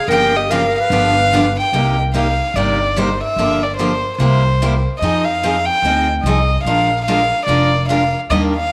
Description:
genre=acoustic string swing (jazz manouche)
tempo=146 BPM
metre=4/4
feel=swing 64% on 8ths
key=C minor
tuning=A4 = 440 Hz
part: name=warm violin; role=melody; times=0.0-8.7 s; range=C5 to G5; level=-19 LUFS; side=equal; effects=none
part: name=warm clarinet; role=second line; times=0.0-1.6 s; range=G4 to B4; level=-22 LUFS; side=equal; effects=slapback echo
part: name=picked steel-string acoustic guitar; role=accompaniment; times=0.1-8.5 s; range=C3 to Bb4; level=-22 LUFS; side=equal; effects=none
part: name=picked steel-string acoustic guitar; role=accompaniment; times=0.1-1.4, 8.3-8.5 s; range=Db3 to G4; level=-27 LUFS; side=equal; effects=none
part: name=upright bass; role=bass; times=0.1-8.7 s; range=F1 to F2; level=-22 LUFS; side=equal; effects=none
room=moderate echo chamber reverb, RT60 1.8 s, small room ambience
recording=none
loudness=-16 LUFS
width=mono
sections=0.0-1.7 A section; 1.7-8.7 B section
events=none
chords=0.1 Gm7b5; 0.9 G7; 1.7 Cm7; 3.4 Gm7; 4.2 C7; 5.0 Fm7; 6.7 Bb7

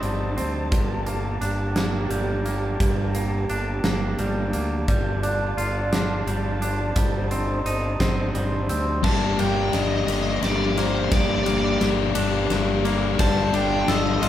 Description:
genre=post-rock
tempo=58 BPM (dotted quarters)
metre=6/8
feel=straight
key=G minor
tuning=A4 = 440 Hz
part: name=muted studio string section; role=sustained chords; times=0.0-14.3 s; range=D3 to A5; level=-31 LUFS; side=right 3 dB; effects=none
part: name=twangy electric guitar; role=arpeggios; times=0.0-14.3 s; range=G2 to A4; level=-28 LUFS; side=right 1 dB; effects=spring reverb
part: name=fuzz fingered electric bass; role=bass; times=0.0-14.3 s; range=G1 to D2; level=-26 LUFS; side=equal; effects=overdrive
part: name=huge arena drum kit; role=drums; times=0.0-14.3 s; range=crash cymbal, hi-hat, kick drum, ride cymbal, snare drum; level=-27 LUFS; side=equal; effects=none
part: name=biting overdriven guitar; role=melody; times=9.0-14.3 s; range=C5 to A5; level=-28 LUFS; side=right 1 dB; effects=analog delay
part: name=sludgy distorted guitar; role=riff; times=9.0-14.3 s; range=G3 to D5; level=-23 LUFS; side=left 7 dB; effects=overdrive
room=moderate large studio reverb, RT60 0.8 s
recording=band playing live in one room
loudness=-20 LUFS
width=side -11 dB against mid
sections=0.0-9.0 A section; 9.0-14.3 B section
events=build-up 9.0-14.3; drum fill 9.0-14.3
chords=0.0 Adim/G; 0.7 Gmadd9; 4.9 Dm/G; 7.0 Adim/G; 9.0 Gm; 13.2 Dm/G

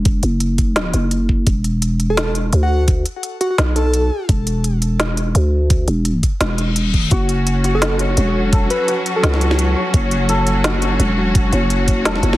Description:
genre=half-time drum and bass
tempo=170 BPM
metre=4/4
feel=swing 57% on 16ths, half-time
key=F# minor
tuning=A4 = 440 Hz
part: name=growling 808-style bass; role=bass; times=0.0-12.4 s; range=E1 to D2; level=-17 LUFS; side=equal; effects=none
part: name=electronic kick drum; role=drums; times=0.1-12.0 s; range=none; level=-16 LUFS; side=equal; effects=overdrive
part: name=organic electronic drum kit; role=drums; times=0.1-12.4 s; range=hi-hat, snare drum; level=-21 LUFS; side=equal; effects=overdrive
part: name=soft struck synth lead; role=melody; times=2.1-4.3, 7.7-9.6 s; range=F#4 to B4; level=-23 LUFS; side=equal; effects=chorus, ping-pong delay
part: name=reverse cymbal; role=sound effects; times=6.6-7.1 s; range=none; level=-25 LUFS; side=left 6 dB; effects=none
part: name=clear studio string section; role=sustained chords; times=7.1-12.4 s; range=F#3 to F#4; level=-22 LUFS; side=equal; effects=sidechain pumping
part: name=santur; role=arpeggios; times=7.1-12.4 s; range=F#4 to C#5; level=-23 LUFS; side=left 2 dB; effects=vintage 12-bit sampler grit, ping-pong delay
room=digital ambience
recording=heavily compressed radio sound, multiband compression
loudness=-14 LUFS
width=side -16 dB against mid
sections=0.0-12.4 A section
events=reverse cymbal 6.6-7.1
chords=0.0 N.C.; 1.5 E5; 7.1 F#m

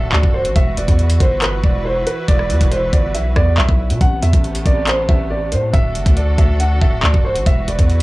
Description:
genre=hip hop, drill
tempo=139 BPM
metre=4/4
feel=half-time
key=unclear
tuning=A4 = 440 Hz
part: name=dark grand piano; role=melody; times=0.0-8.0 s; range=B4 to F#5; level=-21 LUFS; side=right 2 dB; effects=none
part: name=muted studio string section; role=sustained chords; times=0.0-8.0 s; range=C3 to B4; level=-26 LUFS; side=left 1 dB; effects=none
part: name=distorted 808-style bass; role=bass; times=0.0-8.0 s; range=C1 to B2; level=-17 LUFS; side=equal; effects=distortion, tube saturation
part: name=drill drum kit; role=drums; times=0.1-8.0 s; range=handclaps, hi-hat, kick drum, rim click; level=-15 LUFS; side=equal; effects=none
room=little or no reverb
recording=dry, gritty hardware recording, transformer saturation, small room ambience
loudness=-13 LUFS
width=side -20 dB against mid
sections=0.0-8.0 A section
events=none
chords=0.0 D; 0.6 Esus2; 4.0 Amadd9; 5.7 D; 7.5 Esus2

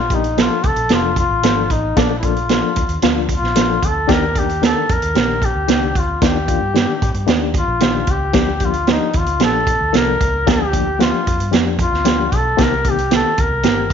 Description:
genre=uptempo 1960s-style soul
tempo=113 BPM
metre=4/4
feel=straight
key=Bb major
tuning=A4 = 440 Hz
part: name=warm duduk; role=melody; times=0.0-13.9 s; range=D4 to Bb4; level=-19 LUFS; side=left 2 dB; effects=none
part: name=vintage muted fingered electric bass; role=bass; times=0.0-13.9 s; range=F1 to A2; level=-23 LUFS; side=equal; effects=none
part: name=barky reed electric piano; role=accompaniment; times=0.1-13.9 s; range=Eb3 to Bb4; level=-21 LUFS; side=left 11 dB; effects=overdrive, tremolo
part: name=vintage drum kit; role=drums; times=0.1-13.9 s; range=hi-hat, kick drum, snare drum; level=-18 LUFS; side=right 4 dB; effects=none
room=moderate echo chamber reverb, RT60 1.4 s, studio ambience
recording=1960s-style stereo, nothing above 7.5 kHz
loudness=-14 LUFS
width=side -7 dB against mid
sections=0.0-13.9 A section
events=none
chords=0.0 Bbmaj7; 4.1 Ebmaj7; 8.3 Gm7; 12.6 Cm7

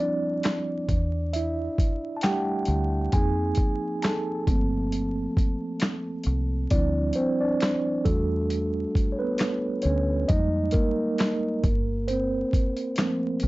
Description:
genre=lo-fi hip hop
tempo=67 BPM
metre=4/4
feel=swing 57% on 16ths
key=unclear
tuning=A4 = 438 Hz
part: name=mellow tine electric piano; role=accompaniment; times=0.0-13.5 s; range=F3 to A5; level=-26 LUFS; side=right 1 dB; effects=medium stereo tremolo, low-pass filter
part: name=dusty soul sampler-style drum kit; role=drums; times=0.4-13.5 s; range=handclaps, hi-hat, kick drum, snare drum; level=-25 LUFS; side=equal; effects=none
part: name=finger snaps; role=percussion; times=0.4-13.2 s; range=none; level=-39 LUFS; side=left 4 dB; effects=none
part: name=deep dub fingered electric bass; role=bass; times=0.9-13.5 s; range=G1 to F2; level=-27 LUFS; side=equal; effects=none
room=light reverb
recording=dark, warm production, vinyl crackle, nothing above 7.8 kHz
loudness=-23 LUFS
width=side -19 dB against mid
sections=0.0-13.5 A section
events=tine electric piano solo 0.0-13.5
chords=0.0 Dm11; 0.9 Em11; 3.1 Fm7; 4.5 Gm11; 6.7 Dm11; 8.1 Em11; 10.3 Fm11; 11.6 Gm11

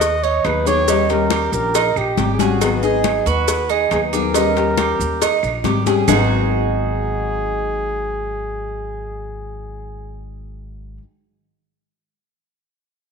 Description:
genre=latin, Cuban son and guajira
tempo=138 BPM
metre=4/4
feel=straight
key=G# minor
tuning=A4 = 440 Hz
part: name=trumpet with bucket mute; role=melody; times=0.0-10.3 s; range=F#4 to D#5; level=-22 LUFS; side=right 1 dB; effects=none
part: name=nylon-string guitar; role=accompaniment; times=0.0-11.0 s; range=G#2 to G#4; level=-23 LUFS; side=left 11 dB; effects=none
part: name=Cuban tres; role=arpeggios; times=0.0-11.0 s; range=G#3 to D#5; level=-21 LUFS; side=right 12 dB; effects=none
part: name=upright bass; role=bass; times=0.0-11.0 s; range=G#1 to D#2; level=-24 LUFS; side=right 1 dB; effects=none
part: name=congas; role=percussion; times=0.0-6.2 s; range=none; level=-25 LUFS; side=left 12 dB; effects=none
part: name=cowbell and bongos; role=percussion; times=0.0-6.2 s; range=none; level=-25 LUFS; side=left 10 dB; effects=none
part: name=maracas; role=percussion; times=0.0-6.2 s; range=none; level=-29 LUFS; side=right 14 dB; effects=none
part: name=claves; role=percussion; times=0.4-6.2 s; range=none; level=-31 LUFS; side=right 12 dB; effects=none
room=moderate echo chamber reverb, RT60 1.6 s, small room ambience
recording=1960s-style stereo with parts hard left and right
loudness=-16 LUFS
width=side -5 dB against mid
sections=0.0-6.1 A section; 6.1-9.6 B section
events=none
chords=0.0 G#m7; 0.9 D#7; 2.6 G#m7; 4.3 D#7; 6.1 G#m7

